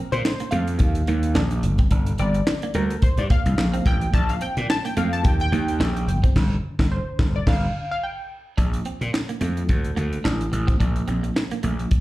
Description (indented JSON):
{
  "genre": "early-eighties boogie funk",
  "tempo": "108 BPM",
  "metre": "4/4",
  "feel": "swing 56% on 16ths",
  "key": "Bb major",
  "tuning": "A4 = 441 Hz",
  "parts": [
    { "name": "funky polysynth comp", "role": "accompaniment", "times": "0.0-8.3 s", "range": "Bb4 to A5", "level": "-28 LUFS", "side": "left 2 dB", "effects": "chorus, slapback echo" },
    { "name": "clean electric guitar", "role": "riff", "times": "0.0-11.8 s", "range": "G3 to D4", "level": "-31 LUFS", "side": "right 6 dB", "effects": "lush chorus, slapback echo" },
    { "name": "gritty slap bass", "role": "bass", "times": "0.1-11.9 s", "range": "G1 to Bb2", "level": "-22 LUFS", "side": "equal", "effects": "overdrive" },
    { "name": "tight funk drum kit", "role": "drums", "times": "0.1-12.0 s", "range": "crash cymbal, handclaps, hi-hat, kick drum, snare drum", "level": "-21 LUFS", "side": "equal", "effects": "none" }
  ],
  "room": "little or no reverb",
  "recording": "live gig heard through the venue's PA, club reverb",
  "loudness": "-20 LUFS",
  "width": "side -17 dB against mid",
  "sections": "0.0-8.6 A section; 8.6-12.0 B section",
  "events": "analog polysynth solo 0.0-8.6; band accent 6.4-8.6",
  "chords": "0.0 Bbmaj7sus2; 0.8 Ebsus2; 1.6 Gm11; 4.1 Bbmaj7(no3); 5.2 Ebmaj7; 6.1 Gsus4; 8.6 Bbmaj7"
}